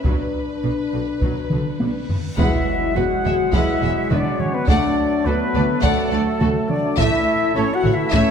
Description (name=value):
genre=cinematic, epic orchestral film score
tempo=104 BPM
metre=4/4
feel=straight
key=unclear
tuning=A4 = 440 Hz
part: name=warm symphonic violin section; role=melody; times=0.0-8.3 s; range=A4 to F#5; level=-29 LUFS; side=left 3 dB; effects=none
part: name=warm chamber violin section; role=second line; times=0.0-8.3 s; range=F#4 to E5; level=-30 LUFS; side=left 1 dB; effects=none
part: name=mellow French horn section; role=sustained chords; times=0.0-8.3 s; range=A3 to F#4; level=-23 LUFS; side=left 5 dB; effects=none
part: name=rich symphonic double bass section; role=bass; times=0.0-8.2 s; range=E1 to D2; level=-27 LUFS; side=right 5 dB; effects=none
part: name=taiko ensemble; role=drums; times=0.0-8.3 s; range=none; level=-23 LUFS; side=equal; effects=none
part: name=reverse cymbal and impact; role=sound effects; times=2.1-4.7 s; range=none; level=-32 LUFS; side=equal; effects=none
part: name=warm symphonic viola section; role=accompaniment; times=0.1-8.3 s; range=D3 to A3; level=-28 LUFS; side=right 3 dB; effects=none
part: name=rich studio cello section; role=bass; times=0.1-8.2 s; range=D2 to B2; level=-28 LUFS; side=right 4 dB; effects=none
part: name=bright silver concert flute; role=second line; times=2.4-8.3 s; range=A4 to F#5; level=-27 LUFS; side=left 2 dB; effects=none
part: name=warm trombone section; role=sustained chords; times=2.4-8.3 s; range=E3 to A3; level=-28 LUFS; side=right 2 dB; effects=none
part: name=warm woodwind section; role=sustained chords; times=2.4-8.3 s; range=A3 to A5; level=-31 LUFS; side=left 1 dB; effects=none
part: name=warm trumpet section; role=stabs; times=2.4-8.3 s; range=A4 to F#5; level=-27 LUFS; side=right 2 dB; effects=none
room=moderate scoring stage reverb, RT60 1.9 s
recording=none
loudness=-17 LUFS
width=side -7 dB against mid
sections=0.0-2.4 A section; 2.4-8.3 A section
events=drum fill 1.5-2.4; reverse cymbal 2.1-2.4; impact 2.4-4.7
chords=0.0 Bm; 2.4 Eadd9; 4.7 D; 7.0 A